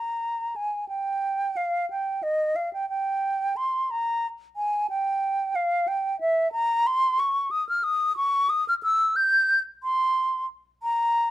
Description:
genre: classical, baroque-style fantasia for unaccompanied flute.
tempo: 60 BPM (dotted quarters).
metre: 6/8.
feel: rubato.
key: unclear.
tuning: A4 = 440 Hz.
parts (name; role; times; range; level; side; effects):
mellow silver concert flute; solo; 0.0-11.3 s; Eb5 to G6; -22 LUFS; equal; none.
room: light reverb.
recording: dark, warm production.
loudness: -23 LUFS.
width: side -14 dB against mid.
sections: 0.0-11.3 A section.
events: none.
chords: none.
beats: | 0.89 1.89 | 2.89 3.90 | 4.88 5.86 | 6.85 7.84 | 8.84 9.83 | 10.83.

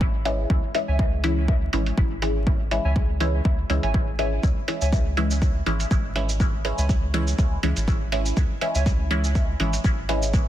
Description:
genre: dub techno.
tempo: 122 BPM.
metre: 4/4.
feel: swing 55% on 16ths.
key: C# minor.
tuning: A4 = 442 Hz.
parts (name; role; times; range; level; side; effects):
soft dub sub bass; bass; 0.0-10.5 s; G#1 to C#2; -25 LUFS; equal; sidechain pumping.
electronic kick drum; drums; 0.0-10.4 s; none; -22 LUFS; equal; overdrive.
filtered dub chord stab; stabs; 0.3-10.5 s; E3 to E4; -27 LUFS; equal; phaser, sidechain pumping, dub echo.
electronic hi-hat and shaker; drums; 0.3-10.4 s; none; -32 LUFS; right 3 dB; none.
warbly lo-fi synth keys; riff; 0.9-8.8 s; C#5 to G#5; -35 LUFS; right 2 dB; chorus, sidechain pumping, dub echo.
room: digital ambience.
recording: dense, heavily limited modern master, vinyl crackle.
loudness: -20 LUFS.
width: side -12 dB against mid.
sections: 0.0-10.5 A section.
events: none.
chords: 0.0 C#m.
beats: 0.01 | 0.50 0.99 1.48 1.98 | 2.47 2.96 3.45 3.94 | 4.43 4.93 5.42 5.91 | 6.40 6.89 7.39 7.88 | 8.37 8.86 9.35 9.85 | 10.34.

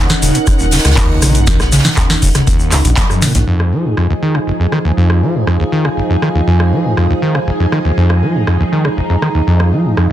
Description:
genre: acid house.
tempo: 120 BPM.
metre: 4/4.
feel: straight.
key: F phrygian.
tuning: A4 = 441 Hz.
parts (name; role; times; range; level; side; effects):
string machine, full ensemble; sustained chords; 0.0-10.1 s; F3 to Gb5; -19 LUFS; right 1 dB; ensemble chorus, sidechain pumping.
overdriven acid bass; riff; 0.0-10.1 s; Eb1 to F3; -14 LUFS; equal; distortion, sidechain pumping.
round analog bass; bass; 0.0-3.4 s; Eb1 to Eb2; -14 LUFS; equal; sidechain pumping.
warbly tape-like pad; texture; 0.0-10.1 s; Eb4 to Bb5; -24 LUFS; equal; chorus, built-in reverb, sidechain pumping.
booming analog drum machine; drums; 0.1-10.1 s; handclaps, hi-hat, rim click, snare drum, toms; -17 LUFS; equal; none.
egg shaker; percussion; 0.1-3.5 s; none; -23 LUFS; left 3 dB; none.
unplugged drum kit; drums; 0.2-3.5 s; hi-hat, snare drum; -24 LUFS; right 2 dB; sidechain pumping on hats, high-pass filter on hats, high-pass filter on snare, high-pass filter on room.
electronic kick drum; drums; 0.5-3.1 s; none; -15 LUFS; equal; none.
room: light reverb.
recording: dense, heavily limited modern master.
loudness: -11 LUFS.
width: side -12 dB against mid.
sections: 0.0-3.5 A section; 3.5-10.1 B section.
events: drop 0.0-3.5; drum fill 3.0-3.5; band accent 3.0.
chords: 0.0 Ebm7; 3.5 Fm7.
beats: 0.47 0.97 | 1.47 1.97 2.47 2.97 | 3.47 3.97 4.47 4.97 | 5.47 5.97 6.47 6.97 | 7.47 7.97 8.47 8.97 | 9.47 9.97.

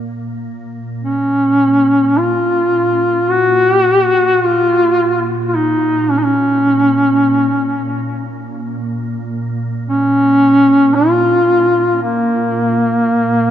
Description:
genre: caucasian folk, Caucasian lament.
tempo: free time.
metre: none.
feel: none.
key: Bb minor.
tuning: A4 = 440 Hz.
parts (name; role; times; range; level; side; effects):
soft additive organ-like pad; drone; 0.0-13.5 s; Bb2; -22 LUFS; equal; ensemble chorus, built-in reverb.
warm duduk; melody; 1.0-13.5 s; Bb3 to Gb4; -12 LUFS; equal; none.
room: moderate cathedral reverb, RT60 5.6 s.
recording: nothing above 7.5 kHz.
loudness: -11 LUFS.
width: side -10 dB against mid.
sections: 0.0-1.0 A section; 1.0-13.5 B section.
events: none.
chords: none.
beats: free time.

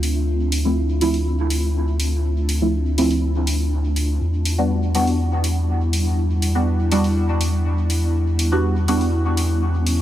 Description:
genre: dub techno.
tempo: 122 BPM.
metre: 4/4.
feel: straight.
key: unclear.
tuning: A4 = 440 Hz.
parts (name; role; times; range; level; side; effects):
granular cloud pad; sustained chords; 0.0-10.0 s; G3 to F4; -26 LUFS; equal; built-in reverb, vintage 12-bit sampler grit.
soft dub sub bass; bass; 0.0-10.0 s; D2 to E2; -20 LUFS; equal; none.
electronic hi-hat; drums; 0.0-10.0 s; none; -28 LUFS; left 1 dB; none.
deep mellow chord stab; stabs; 0.6-9.0 s; F3 to F#4; -23 LUFS; right 1 dB; chorus, phaser, vintage 12-bit sampler grit, dub echo.
room: light reverb, digital ambience.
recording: none.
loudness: -18 LUFS.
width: side -12 dB against mid.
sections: 0.0-10.0 A section.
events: none.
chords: 0.0 Dm7; 4.2 Em7.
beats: | 0.28 0.77 1.26 1.75 | 2.24 2.73 3.23 3.72 | 4.21 4.70 5.19 5.68 | 6.18 6.67 7.16 7.65 | 8.14 8.64 9.13 9.62.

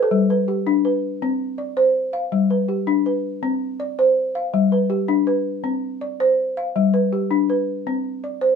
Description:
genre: west african traditional.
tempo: 108 BPM (dotted quarters).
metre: 12/8.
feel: straight.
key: unclear.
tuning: A4 = 439 Hz.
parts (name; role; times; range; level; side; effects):
balafon; solo; 0.0-8.6 s; G3 to F5; -18 LUFS; left 1 dB; none.
room: moderate small room reverb, RT60 0.6 s.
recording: minimal, uncompressed stereo recording.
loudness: -18 LUFS.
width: side -6 dB against mid.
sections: 0.1-8.6 A section.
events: none.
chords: 0.1 G; 1.2 Csus24; 2.3 G; 3.4 Csus24; 4.5 G; 5.6 Csus24; 6.8 G; 7.9 Csus2.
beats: | 0.11 0.67 1.22 1.77 | 2.32 2.88 3.43 3.98 | 4.54 5.09 5.65 6.20 | 6.76 7.31 7.87 8.42.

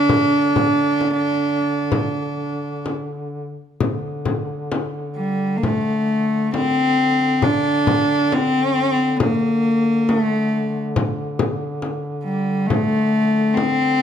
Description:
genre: caucasian folk, Caucasian lament.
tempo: 67 BPM.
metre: 4/4.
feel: rubato.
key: unclear.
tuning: A4 = 436 Hz.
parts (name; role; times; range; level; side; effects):
clear cello; melody; 0.0-14.0 s; G3 to D4; -17 LUFS; equal; none.
mellow duduk; drone; 0.0-14.0 s; D3; -28 LUFS; left 1 dB; none.
frame drum; percussion; 0.1-13.8 s; none; -23 LUFS; left 3 dB; none.
room: light reverb.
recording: close, detailed microphones.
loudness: -17 LUFS.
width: side -9 dB against mid.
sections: 0.0-3.8 A section; 3.8-14.0 B section.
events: none.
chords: none.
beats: | 0.10 1.01 1.93 2.87 | 3.81 4.72 5.64 6.54 | 7.43 8.33 9.21 10.10 | 10.96 11.82 12.70 13.57.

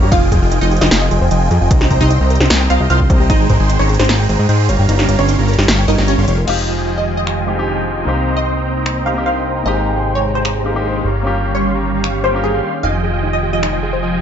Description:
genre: future bass.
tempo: 151 BPM.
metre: 4/4.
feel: half-time.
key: F minor.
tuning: A4 = 441 Hz.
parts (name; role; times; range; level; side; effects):
soft round pluck; arpeggios; 0.0-6.4, 12.8-14.1 s; Eb4 to Bb5; -25 LUFS; left 3 dB; chorus, cassette tape, sidechain pumping, dub echo.
supersaw chords; riff; 0.0-14.2 s; F3 to Db6; -20 LUFS; right 1 dB; phaser, sidechain pumping, low-pass filter.
fat analog bass; bass; 0.0-14.2 s; F1 to Ab2; -16 LUFS; equal; sidechain pumping.
wide unison pluck; melody; 0.1-13.7 s; C4 to F5; -21 LUFS; right 1 dB; lush chorus, sidechain pumping, dub echo.
big-room dance drum kit; drums; 0.1-13.7 s; crash cymbal, finger snaps, hi-hat, ride cymbal, snare drum; -18 LUFS; equal; none.
electronic kick drum; drums; 0.1-3.6 s; none; -14 LUFS; equal; none.
warm baby grand piano; accompaniment; 6.5-12.9 s; Ab3 to G4; -23 LUFS; left 4 dB; sidechain pumping, dub echo.
airy breathy pad; sustained chords; 6.5-14.2 s; C3 to G4; -27 LUFS; right 1 dB; chorus, sidechain pumping.
room: light reverb, digital ambience.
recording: nothing above 7.7 kHz.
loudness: -12 LUFS.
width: side -9 dB against mid.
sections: 0.0-6.5 A section; 6.5-14.2 B section.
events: drop 0.0-6.5; kick drops out 4.9-6.5.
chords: 0.1 Fm9; 1.7 Cm7; 3.3 Abmaj7; 4.7 Eb7/G; 6.5 Fm9; 8.1 Cm7; 9.7 Abmaj7; 11.0 Eb7/G; 12.8 Fm9.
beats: | 0.12 0.52 0.91 1.31 | 1.71 2.11 2.50 2.90 | 3.30 3.69 4.09 4.49 | 4.89 5.28 5.68 6.08 | 6.48 6.87 7.27 7.67 | 8.07 8.46 8.86 9.26 | 9.65 10.05 10.45 10.85 | 11.24 11.64 12.04 12.44 | 12.83 13.23 13.63 14.03.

